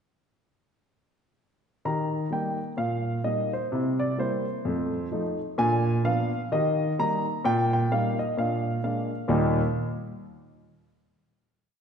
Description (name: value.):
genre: jazz, stride piano.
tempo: 129 BPM.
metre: 4/4.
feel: swing 61% on 8ths.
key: Eb major.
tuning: A4 = 439 Hz.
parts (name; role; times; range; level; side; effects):
warm grand piano; solo; 1.9-9.6 s; Eb2 to Bb5; -24 LUFS; equal; none.
room: wet recital hall reverb, RT60 1.7 s.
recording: recorded in a church or concert hall, nothing above 10.9 kHz.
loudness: -24 LUFS.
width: side -7 dB against mid.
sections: 1.8-9.3 A section; 9.3-11.2 final chord.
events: none.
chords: 1.8 Eb; 3.7 C7; 4.7 F7; 5.6 Bb7b9; 6.5 Eb; 7.5 Eb/Bb; 8.4 Bb7; 9.3 Eb.